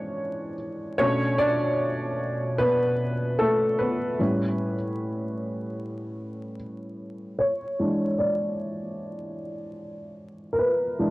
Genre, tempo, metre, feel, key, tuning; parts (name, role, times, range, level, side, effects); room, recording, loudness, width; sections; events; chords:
hip hop; 75 BPM; 4/4; swing 56% on 16ths; A4 = 440 Hz
dark upright piano; solo; 0.0-11.1 s; A2 to D5; -24 LUFS; equal; cassette tape, low-pass filter
moderate studio reverb, RT60 0.6 s; dry, gritty hardware recording, transformer saturation, vinyl crackle; -23 LUFS; side -19 dB against mid
0.0-7.4 A section; 7.4-11.1 B section
upright piano solo 0.0-7.4, 7.4-11.1
0.0 E6; 1.0 Bm9; 4.2 A9; 7.4 E6